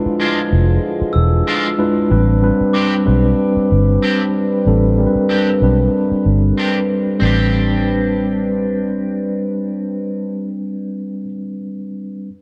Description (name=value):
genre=soul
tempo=94 BPM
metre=4/4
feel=swing 54% on 16ths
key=A minor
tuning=A4 = 441 Hz
part: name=mellow tine electric piano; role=accompaniment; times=0.0-12.3 s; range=G3 to B4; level=-20 LUFS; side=equal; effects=none
part: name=dark French horn section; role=sustained chords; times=0.0-10.5 s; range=D3 to B4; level=-27 LUFS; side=equal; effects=none
part: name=vintage muted fingered electric bass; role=bass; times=0.1-11.2 s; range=E1 to B1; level=-17 LUFS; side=equal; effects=none
part: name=electric guitar at the edge of break-up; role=riff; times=0.2-11.3 s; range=G#3 to G4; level=-26 LUFS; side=equal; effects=lush chorus
part: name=glockenspiel with hard plastic mallets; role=texture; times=0.2-11.2 s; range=D6 to C7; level=-32 LUFS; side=equal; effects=none
room=moderate plate reverb, RT60 3.3 s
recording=dark, warm production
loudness=-16 LUFS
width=mono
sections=0.0-2.1 A section; 2.1-7.2 B section; 7.2-9.8 C section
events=none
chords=0.0 E7b9; 2.1 Am11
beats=0.20 0.84 1.48 | 2.12 2.75 3.39 4.03 | 4.67 5.31 5.94 6.58 | 7.22 7.86 8.50 9.14